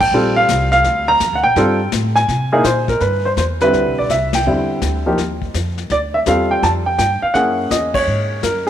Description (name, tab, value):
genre	jazz piano trio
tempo	166 BPM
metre	4/4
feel	swing 66% on 8ths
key	unclear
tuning	A4 = 439 Hz
part	warm baby grand piano	melody	0.0-8.7 s	D3 to Bb5	-15 LUFS	right 1 dB	none
part	upright bass	bass	0.0-8.7 s	A1 to C3	-21 LUFS	equal	none
part	vintage brush drum kit	drums	0.0-8.7 s	brushed snare drum, crash cymbal, hi-hat, kick drum, ride cymbal, snare drum	-25 LUFS	left 8 dB	none
room	light reverb, small room ambience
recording	1960s-style stereo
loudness	-14 LUFS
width	side -10 dB against mid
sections	0.0-3.0 A section; 3.0-8.7 B section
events	band accent 4.3, 7.9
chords	0.1 Bbmaj9; 1.6 Gsus2; 2.3 C7(#5, no3); 3.0 Cmaj9; 4.5 Em7; 5.2 Ebsus2; 5.9 Dm11; 7.3 F#9